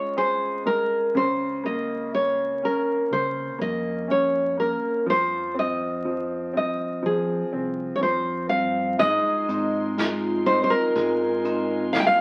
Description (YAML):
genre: acoustic folk-pop ballad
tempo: 61 BPM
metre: 4/4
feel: straight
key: Ab major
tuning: A4 = 440 Hz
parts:
  - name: nylon-string guitar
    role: melody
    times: 0.0-12.2 s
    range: Ab4 to G5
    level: -26 LUFS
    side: equal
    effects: none
  - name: bright grand piano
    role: accompaniment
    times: 0.0-12.2 s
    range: Db3 to Ab4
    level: -31 LUFS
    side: equal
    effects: none
  - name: fingered electric bass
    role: bass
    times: 1.1-12.2 s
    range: C2 to F3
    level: -39 LUFS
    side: equal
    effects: none
  - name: dark chamber string section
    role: sustained chords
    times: 9.0-12.2 s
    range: F4 to C6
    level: -39 LUFS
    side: equal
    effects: none
  - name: vibraphone with hard mallets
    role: arpeggios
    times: 9.0-12.2 s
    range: Bb3 to F4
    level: -29 LUFS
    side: equal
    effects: none
  - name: soft brush drum kit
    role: drums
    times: 9.0-12.2 s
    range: hi-hat, kick drum, snare drum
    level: -30 LUFS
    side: equal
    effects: none
room: moderate studio reverb, RT60 0.8 s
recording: very old 78 rpm record, vinyl crackle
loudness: -24 LUFS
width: mono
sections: 0.0-9.0 A section; 9.0-12.2 B section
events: none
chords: 0.0 Db; 1.1 Bbm/Db; 5.1 Fm7; 9.0 Ab69